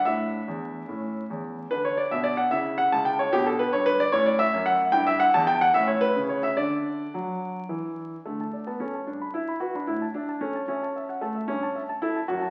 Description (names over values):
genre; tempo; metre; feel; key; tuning
classical-period piano sonatina; 74 BPM (dotted quarters); 6/8; rubato; unclear; A4 = 437 Hz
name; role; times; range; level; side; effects
warm baby grand piano; solo; 0.0-12.5 s; C#2 to B5; -26 LUFS; equal; none
room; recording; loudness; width
wet recital hall reverb, RT60 1.4 s; very old 78 rpm record, vinyl crackle; -26 LUFS; mono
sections
0.0-8.3 A section; 8.3-12.5 A section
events
none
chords
0.0 Asus4; 0.9 A; 1.7 Bm/D; 2.5 C#dim; 3.3 G/B; 4.1 F#m/A; 4.9 Em/G; 5.8 A; 6.6 D; 8.3 D5; 9.1 Em/G; 9.9 A; 11.5 A7/G